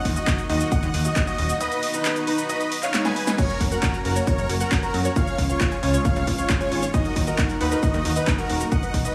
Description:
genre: uplifting trance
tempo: 135 BPM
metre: 4/4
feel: straight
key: unclear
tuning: A4 = 438 Hz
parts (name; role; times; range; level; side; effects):
- dense compressed supersaw; melody; 0.0-9.1 s; D#4 to G#5; -30 LUFS; equal; sidechain pumping, digital delay
- warm grand piano; second line; 0.0-9.1 s; A#4 to G#5; -34 LUFS; equal; sidechain pumping, digital delay
- plucky analog bass; bass; 0.1-9.1 s; D#1 to F#2; -27 LUFS; equal; sidechain pumping
- electronic kick drum; drums; 0.1-9.0 s; none; -26 LUFS; equal; overdrive
- punchy analog drum machine; drums; 0.1-9.1 s; crash cymbal, handclaps, hi-hat, shaker, snare drum; -30 LUFS; equal; overdrive
- analog pluck; arpeggios; 3.4-9.1 s; D#4 to A#5; -33 LUFS; equal; chorus, sidechain pumping, digital delay
room: light reverb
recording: small room ambience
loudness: -23 LUFS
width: mono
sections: 0.0-9.1 A section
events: drum fill 2.9-3.4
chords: 0.0 D#m; 1.6 B; 3.4 F#; 5.2 C#; 6.9 D#m

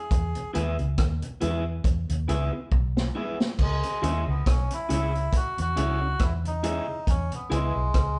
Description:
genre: roots reggae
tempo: 69 BPM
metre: 4/4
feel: swing 57% on 16ths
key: C# minor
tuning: A4 = 443 Hz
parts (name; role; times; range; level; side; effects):
- melodica; melody; 0.0-8.2 s; G#3 to G#4; -33 LUFS; equal; none
- vintage muted fingered electric bass; bass; 0.1-8.2 s; B1 to E2; -30 LUFS; equal; none
- vintage drum kit; drums; 0.1-8.2 s; crash cymbal, hi-hat, kick drum, rim click, snare drum; -29 LUFS; equal; vintage 12-bit sampler grit
- mellow tonewheel organ; accompaniment; 0.4-7.8 s; E2 to E4; -40 LUFS; equal; slow rotary speaker
- electric guitar at the edge of break-up; accompaniment; 0.5-7.7 s; E4 to E5; -36 LUFS; equal; warbly pitch drift
- dark upright piano; stabs; 0.5-7.7 s; B3 to G#4; -39 LUFS; equal; none
room: moderate studio reverb, RT60 0.8 s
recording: band playing live in one room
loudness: -26 LUFS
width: mono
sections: 0.0-3.6 A section; 3.6-8.2 A section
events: drum fill 2.7-3.6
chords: 0.0 C#m (rootless); 3.6 C#m

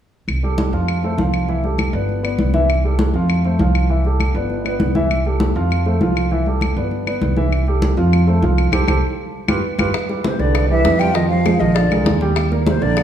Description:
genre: Afro-Cuban jazz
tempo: 199 BPM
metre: 4/4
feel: straight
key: C major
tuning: A4 = 440 Hz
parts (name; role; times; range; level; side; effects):
- upright bass; bass; 0.3-13.0 s; G1 to F2; -18 LUFS; right 1 dB; none
- claves; percussion; 0.3-13.0 s; none; -28 LUFS; left 5 dB; none
- congas; percussion; 0.3-13.0 s; none; -23 LUFS; left 1 dB; none
- warm grand piano; accompaniment; 0.4-13.0 s; E3 to G5; -21 LUFS; right 1 dB; none
- bongos; percussion; 9.9-13.0 s; none; -26 LUFS; left 5 dB; none
- breathy trombone; second line; 10.2-13.0 s; C3 to G3; -21 LUFS; right 7 dB; none
- breathy hollow jazz flute; melody; 10.3-13.0 s; C5 to G5; -21 LUFS; left 3 dB; none
room: moderate recital hall reverb, RT60 1.6 s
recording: small room ambience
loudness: -15 LUFS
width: side -10 dB against mid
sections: 0.3-9.9 A section; 9.9-13.0 B section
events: band accent 8.7-9.9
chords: 0.3 C5; 0.9 F; 1.5 C69; 2.1 G; 2.7 C6; 3.3 F; 3.9 C69; 4.5 G; 5.1 C6; 5.7 F; 6.3 C69; 6.9 G; 7.5 C6; 8.1 F; 8.7 C5; 9.3 G7; 9.9 Cmaj7; 11.2 Fm; 11.8 Bb7; 12.4 Ebmaj7

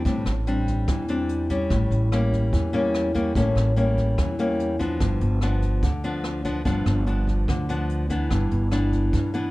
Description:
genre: bossa nova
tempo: 145 BPM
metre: 4/4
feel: straight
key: unclear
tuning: A4 = 440 Hz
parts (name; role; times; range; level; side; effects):
- nylon-string guitar; accompaniment; 0.0-9.5 s; G2 to D4; -24 LUFS; left 1 dB; none
- upright bass; bass; 0.1-9.5 s; G1 to G2; -25 LUFS; equal; none
- jazz brush drum kit; drums; 0.1-9.4 s; hi-hat, kick drum, rim click; -29 LUFS; equal; none
room: light reverb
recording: dark, warm production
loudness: -21 LUFS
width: side -19 dB against mid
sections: 0.0-9.5 A section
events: none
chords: 0.0 Am7; 1.7 A7b9; 5.0 G7; 8.3 Cmaj9/G (rootless)

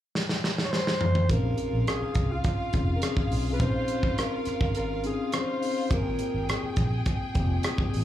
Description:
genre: lush 1970s-style soul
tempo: 104 BPM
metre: 4/4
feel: straight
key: Bb dorian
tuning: A4 = 440 Hz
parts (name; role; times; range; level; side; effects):
- modern studio drum kit; drums; 0.2-8.0 s; hi-hat, kick drum, rim click, snare drum, toms; -28 LUFS; equal; none
- breathy alto saxophone; melody; 0.6-8.0 s; F4 to Db5; -32 LUFS; right 1 dB; plate reverb, slapback echo
- clear studio violin section; second line; 1.3-8.0 s; F4 to G5; -37 LUFS; equal; plate reverb, slapback echo
- mellow tine electric piano; accompaniment; 1.3-8.0 s; Bb3 to Ab4; -32 LUFS; left 5 dB; slow stereo tremolo, plate reverb, slapback echo
- vintage muted fingered electric bass; bass; 1.3-8.0 s; F1 to C2; -28 LUFS; equal; none
room: moderate club reverb, RT60 0.5 s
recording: live gig heard through the venue's PA, club reverb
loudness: -24 LUFS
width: side -12 dB against mid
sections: 0.0-1.3 A section; 1.3-8.0 B section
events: drum fill 0.1-1.3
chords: 0.0 N.C.; 1.3 Bbm11; 5.9 Abmaj13

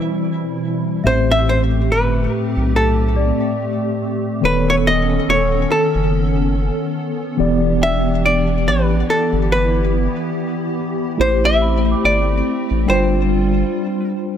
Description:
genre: contemporary R&B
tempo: 71 BPM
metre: 4/4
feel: swing 58% on 16ths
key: unclear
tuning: A4 = 440 Hz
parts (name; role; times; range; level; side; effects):
- archtop guitar, miked and amplified; melody; 0.0-14.1 s; A4 to E5; -19 LUFS; left 1 dB; ping-pong delay
- mellow tine electric piano; accompaniment; 0.0-14.4 s; A2 to D5; -20 LUFS; equal; medium stereo tremolo
- hollow soft pad; sustained chords; 0.0-14.4 s; B2 to A4; -23 LUFS; equal; ensemble chorus
- large celesta; texture; 1.0-14.3 s; D5 to D6; -30 LUFS; left 1 dB; ping-pong delay
- saturated sub bass; bass; 1.1-13.6 s; D#1 to B1; -19 LUFS; equal; none
room: light reverb, digital ambience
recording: none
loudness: -15 LUFS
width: side -9 dB against mid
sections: 0.0-14.4 A section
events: none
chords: 0.0 Cmaj7; 1.0 Am7; 4.4 B7/D#; 7.4 Em7; 11.2 Am7; 12.9 G7sus4

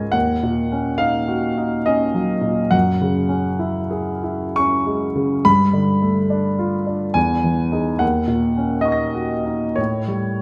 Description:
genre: classical, impressionist solo piano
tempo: 60-72 BPM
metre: 3/4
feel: rubato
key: unclear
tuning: A4 = 440 Hz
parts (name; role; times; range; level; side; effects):
- warm grand piano; solo; 0.0-10.4 s; C#2 to A#6; -20 LUFS; equal; none
room: moderate recital hall reverb, RT60 1.6 s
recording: recorded in a church or concert hall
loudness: -20 LUFS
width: mono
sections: 0.0-10.4 A section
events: none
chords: 0.1 D#m7; 2.7 F#sus2; 5.5 G9; 7.2 Emaj7; 8.0 D#m7; 9.8 A7

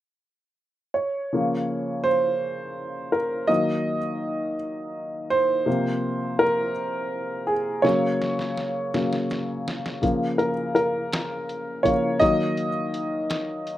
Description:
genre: six-eight pop ballad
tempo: 55 BPM (dotted quarters)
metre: 6/8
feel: straight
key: Bb minor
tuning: A4 = 441 Hz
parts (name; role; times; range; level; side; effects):
- warm upright piano; accompaniment; 0.9-13.8 s; C3 to Eb5; -22 LUFS; equal; none
- lo-fi sampler-style drum kit; drums; 7.8-13.8 s; hi-hat, kick drum, snare drum; -31 LUFS; equal; none
room: digital ambience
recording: rough home demo mix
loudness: -22 LUFS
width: side -13 dB against mid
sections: 0.0-1.3 A section; 1.3-13.8 B section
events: upright piano solo 1.3-13.8; drum fill 7.8-10.0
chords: 0.0 N.C.; 1.3 Bbm; 3.5 Ebm; 5.7 C7sus4; 7.8 Gb; 10.0 Bbm; 12.2 Ebm

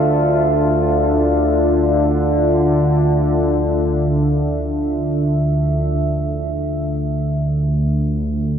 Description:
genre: dark ambient drone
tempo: free time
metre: none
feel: none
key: D minor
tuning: A4 = 441 Hz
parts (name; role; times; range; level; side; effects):
- deep dark ambient pad; sustained chords; 0.0-6.0 s; D4 to E5; -20 LUFS; equal; chorus, built-in reverb
- analog drone; drone; 0.0-8.6 s; D2 to D3; -17 LUFS; equal; chorus
- bronze singing bowl; texture; 0.0-6.0 s; A4; -37 LUFS; right 1 dB; none
room: wet cathedral reverb, RT60 5.0 s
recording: in a vast, echoing space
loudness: -15 LUFS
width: side -8 dB against mid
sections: 0.0-6.0 A section; 6.0-8.6 B section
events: none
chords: 0.0 Dmadd9; 6.0 N.C.

